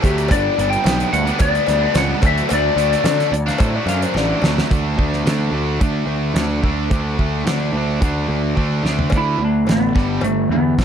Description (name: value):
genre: classic rock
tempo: 109 BPM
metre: 4/4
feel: straight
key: D major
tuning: A4 = 440 Hz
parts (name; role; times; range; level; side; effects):
- clean lap steel guitar; second line; 0.0-4.6 s; G4 to F5; -26 LUFS; left 4 dB; none
- tight distorted guitar; riff; 0.0-10.8 s; G2 to D4; -22 LUFS; right 2 dB; distortion
- fuzz picked electric bass; bass; 0.0-10.8 s; G1 to D3; -20 LUFS; right 1 dB; overdrive
- damped 70s drum kit; drums; 0.0-10.8 s; hi-hat, kick drum, snare drum, toms; -20 LUFS; right 1 dB; none
- cowbell; percussion; 0.0-4.5, 9.1-10.8 s; none; -30 LUFS; left 6 dB; none
- lightly driven lead guitar; melody; 0.3-3.3, 9.2-10.8 s; A3 to G5; -20 LUFS; left 3 dB; none
room: small room ambience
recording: none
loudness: -15 LUFS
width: side -8 dB against mid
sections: 0.0-4.7 A section; 4.7-9.1 B section; 9.1-10.8 C section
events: drum fill 4.2-4.7, 8.6-9.1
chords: 0.3 G; 2.2 D; 4.7 D5; 10.0 G